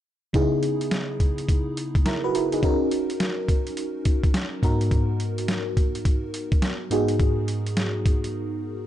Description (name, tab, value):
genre	R&B, new jack swing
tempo	105 BPM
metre	4/4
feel	swing 63% on 16ths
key	C# dorian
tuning	A4 = 440 Hz
part	FM electric piano with soft pad layer	accompaniment	0.3-8.9 s	G#2 to B4	-24 LUFS	equal	chorus, phaser
part	boom bap sampler-style drum kit	drums	0.3-8.3 s	hi-hat, kick drum, snare drum	-23 LUFS	equal	none
room	light reverb, digital ambience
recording	nothing above 10.7 kHz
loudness	-22 LUFS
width	side -12 dB against mid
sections	0.3-8.9 A section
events	break 8.3-8.9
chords	0.3 C#m9; 2.6 D#m7; 4.6 G#m9